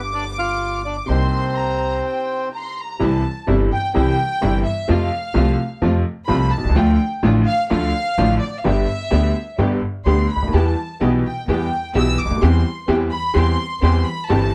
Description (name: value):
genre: tango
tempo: 127 BPM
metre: 4/4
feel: rubato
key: C minor, C major from 3.0 s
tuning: A4 = 440 Hz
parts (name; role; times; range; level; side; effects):
- warm studio violin section; second line; 0.0-14.5 s; D5 to E6; -27 LUFS; equal; none
- bright upright piano; accompaniment; 0.0-14.5 s; G1 to G4; -24 LUFS; equal; none
- upright bass; bass; 0.0-14.5 s; G1 to F2; -22 LUFS; equal; none
- bandoneon; melody; 0.1-2.5 s; C4 to F5; -25 LUFS; equal; plate reverb
- dark symphonic string section; stabs; 3.0-14.5 s; G3 to G4; -28 LUFS; equal; none
room: light reverb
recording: dark, warm production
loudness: -19 LUFS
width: mono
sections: 0.0-3.0 A section; 3.0-14.5 B section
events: break 2.0-3.0; violin section solo 3.0-14.5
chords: 0.0 G7; 1.1 Cm7; 3.0 C; 4.9 F; 6.8 Dm; 8.6 G; 10.5 Em; 12.4 C/E